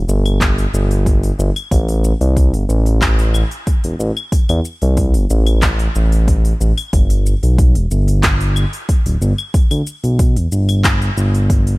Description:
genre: organic downtempo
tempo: 92 BPM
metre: 4/4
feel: straight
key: A minor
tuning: A4 = 440 Hz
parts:
  - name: smooth synth bass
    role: bass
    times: 0.0-11.8 s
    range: D1 to E2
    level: -14 LUFS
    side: equal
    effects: none
  - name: deep house drum kit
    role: drums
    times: 0.1-11.8 s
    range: claves, handclaps, hi-hat, shaker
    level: -22 LUFS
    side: left 1 dB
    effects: studio ambience
  - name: electronic kick drum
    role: drums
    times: 0.4-11.6 s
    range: none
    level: -15 LUFS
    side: equal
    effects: studio ambience
room: digital ambience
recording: none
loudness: -13 LUFS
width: side -22 dB against mid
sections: 0.0-11.8 A section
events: none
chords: none

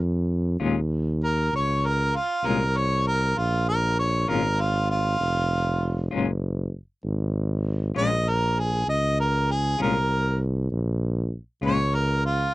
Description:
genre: slow blues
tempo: 65 BPM (dotted quarters)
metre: 12/8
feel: straight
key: Bb minor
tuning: A4 = 440 Hz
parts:
  - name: breathy tuba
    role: bass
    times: 0.0-12.5 s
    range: F1 to F2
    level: -24 LUFS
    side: equal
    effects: none
  - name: semi-hollow electric guitar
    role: accompaniment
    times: 0.6-11.8 s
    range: Bb2 to F4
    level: -25 LUFS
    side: left 5 dB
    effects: tremolo
  - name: warm harmonica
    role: melody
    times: 1.2-12.5 s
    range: F4 to Eb5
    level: -24 LUFS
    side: right 1 dB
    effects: overdrive
room: little or no reverb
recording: dry, close 1970s-style studio recording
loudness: -22 LUFS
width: side -18 dB against mid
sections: 0.0-12.5 A section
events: harmonica solo 0.0-12.5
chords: 0.0 Bbm7

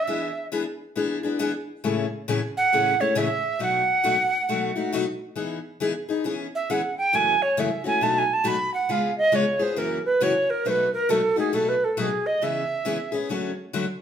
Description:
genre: jazz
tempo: 136 BPM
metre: 4/4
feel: swing 62% on 8ths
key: E major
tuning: A4 = 441 Hz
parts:
  - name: alto recorder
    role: melody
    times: 0.0-13.1 s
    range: G#4 to B5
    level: -22 LUFS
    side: right 2 dB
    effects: none
  - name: picked steel-string acoustic guitar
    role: accompaniment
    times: 0.1-13.8 s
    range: F#2 to G#4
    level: -26 LUFS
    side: left 4 dB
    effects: none
room: wet large studio reverb, RT60 0.9 s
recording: band playing live in one room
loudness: -22 LUFS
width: side -8 dB against mid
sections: 0.0-5.4 A section; 5.4-14.0 B section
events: recorder solo 5.4-14.0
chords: 0.1 E7; 1.8 Amaj7; 3.6 B7; 5.4 Emaj7; 6.2 C#m7/E; 7.1 F#m7; 8.0 B7; 8.9 C#7; 9.8 F#7; 10.6 B7; 12.4 C#m7; 13.3 Dmaj7

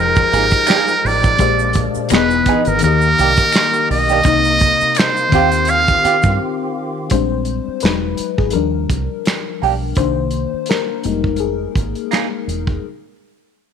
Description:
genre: R&B, neo-soul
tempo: 84 BPM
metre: 4/4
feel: swing 55% on 16ths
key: F dorian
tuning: A4 = 438 Hz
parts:
  - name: trumpet with metal mute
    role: melody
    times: 0.0-6.4 s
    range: Bb4 to F5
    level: -15 LUFS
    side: right 2 dB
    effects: slapback echo
  - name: FM electric piano with soft pad layer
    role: accompaniment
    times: 0.0-12.8 s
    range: Bb2 to F5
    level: -20 LUFS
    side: left 12 dB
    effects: chorus
  - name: percussive tonewheel organ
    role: sustained chords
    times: 0.0-7.1 s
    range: C3 to G5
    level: -26 LUFS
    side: right 2 dB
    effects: fast rotary speaker, overdrive
  - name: deep dub fingered electric bass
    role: bass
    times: 0.0-12.8 s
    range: E1 to G2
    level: -21 LUFS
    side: right 2 dB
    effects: none
  - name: warm soul drum kit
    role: drums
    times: 0.2-12.8 s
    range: finger snaps, hi-hat, kick drum, snare drum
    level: -18 LUFS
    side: right 2 dB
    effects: none
  - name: tube shaker and finger snaps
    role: percussion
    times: 0.2-6.4 s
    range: none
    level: -30 LUFS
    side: left 1 dB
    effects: none
  - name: archtop guitar, miked and amplified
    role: second line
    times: 0.3-12.3 s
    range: Bb3 to Ab4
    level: -19 LUFS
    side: right 16 dB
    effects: wah
room: light reverb, studio ambience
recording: 1960s-style stereo with parts hard left and right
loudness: -13 LUFS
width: side -7 dB against mid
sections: 0.0-7.1 A section; 7.1-12.8 B section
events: break 6.4-7.1; FM electric piano solo 7.1-12.8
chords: 0.0 Fm11; 1.4 Bb13; 2.1 Emaj7; 2.8 Eb; 4.3 Cm7; 5.3 Eb69; 7.1 Bb13; 7.8 Emaj7; 8.5 Ebmaj7; 10.0 Cm9; 11.0 Fm11

